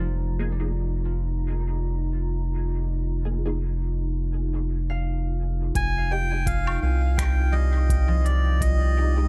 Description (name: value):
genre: ambient dub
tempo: 84 BPM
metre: 4/4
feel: swing 56% on 16ths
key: F minor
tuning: A4 = 439 Hz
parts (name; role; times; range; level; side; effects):
- deep dark ambient pad; sustained chords; 0.0-9.3 s; Eb4 to Bb5; -38 LUFS; equal; chorus, built-in reverb
- concert harp; arpeggios; 0.0-9.3 s; F3 to F5; -41 LUFS; equal; dub echo
- round analog bass; bass; 0.0-9.3 s; F1 to C2; -26 LUFS; equal; none
- filtered dub chord stab; stabs; 0.4-9.3 s; Ab3 to Ab4; -40 LUFS; equal; phaser, ensemble chorus, dub echo
- melodica; melody; 5.8-9.3 s; D5 to Ab5; -31 LUFS; equal; dub echo
- electronic kick drum; drums; 5.8-8.8 s; none; -32 LUFS; equal; none
- organic electronic drum kit; drums; 5.8-8.8 s; finger snaps, hi-hat, woodblock; -38 LUFS; equal; dub echo
room: little or no reverb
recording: echo-heavy mix, low-pass filter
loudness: -25 LUFS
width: mono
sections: 0.0-5.8 A section; 5.8-9.3 B section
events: filter sweep on synth stab 0.0-5.8; filter sweep 0.0-5.8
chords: 0.0 F7sus2; 5.8 Fm9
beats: | 0.04 0.75 1.47 2.18 | 2.89 3.61 4.32 5.04 | 5.75 6.46 7.18 7.89 | 8.61